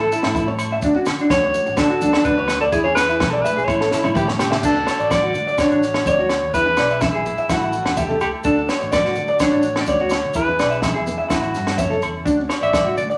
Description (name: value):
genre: highlife guitar band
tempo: 126 BPM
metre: 4/4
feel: straight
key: D major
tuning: A4 = 440 Hz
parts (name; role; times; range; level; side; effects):
- breathy alto saxophone; melody; 0.0-13.1 s; E4 to E5; -23 LUFS; equal; none
- nylon-string guitar; accompaniment; 0.0-13.2 s; A3 to D4; -34 LUFS; equal; none
- combo organ; sustained chords; 0.0-13.2 s; A3 to A4; -36 LUFS; equal; none
- electric guitar through a small old amp; arpeggios; 0.0-13.2 s; D4 to E5; -23 LUFS; equal; none
- fingered electric bass; bass; 0.0-13.2 s; A1 to D3; -32 LUFS; equal; none
- congas; percussion; 0.1-13.0 s; none; -34 LUFS; equal; none
- maracas; percussion; 0.1-13.2 s; none; -40 LUFS; equal; none
- compact cocktail drum kit; drums; 0.2-12.9 s; crash cymbal, kick drum, snare drum, toms; -28 LUFS; equal; none
- agogo bells; percussion; 0.2-12.9 s; none; -32 LUFS; equal; none
room: wet large studio reverb, RT60 0.9 s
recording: none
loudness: -19 LUFS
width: mono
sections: 0.0-4.6 A section; 4.6-13.2 B section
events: drum fill 3.7-4.6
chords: 0.0 A; 0.8 Dmaj7; 2.7 E7; 3.7 A; 4.6 Dmaj7; 6.5 E7; 7.5 A; 8.4 Dmaj7; 10.4 E7; 11.3 A; 12.3 Dmaj7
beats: 0.35 | 0.83 1.30 1.78 2.25 | 2.73 3.21 3.68 4.16 | 4.63 5.11 5.59 6.06 | 6.54 7.02 7.49 7.97 | 8.45 8.92 9.40 9.88 | 10.35 10.83 11.31 11.78 | 12.26 12.74